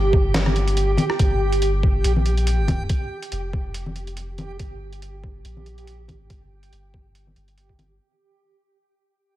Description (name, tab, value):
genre	deep dubstep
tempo	141 BPM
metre	4/4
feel	swing 55% on 16ths, half-time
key	G minor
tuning	A4 = 440 Hz
part	soft dub sub bass	bass	0.0-8.0 s	F1 to Bb1	-23 LUFS	equal	none
part	backwards swelling texture	texture	0.0-8.0 s	G4	-26 LUFS	right 2 dB	built-in reverb
part	electronic kick drum	drums	0.1-7.8 s	none	-21 LUFS	equal	none
part	trip hop sampler-style drum kit	drums	0.3-7.9 s	hi-hat, rim click, snare drum	-28 LUFS	equal	none
part	congas	percussion	0.5-7.9 s	none	-27 LUFS	left 2 dB	dub echo
room	moderate lush hall reverb, RT60 1.8 s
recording	none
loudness	-19 LUFS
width	side -14 dB against mid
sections	0.0-8.0 A section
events	fade-out 0.0-8.0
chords	0.0 Gm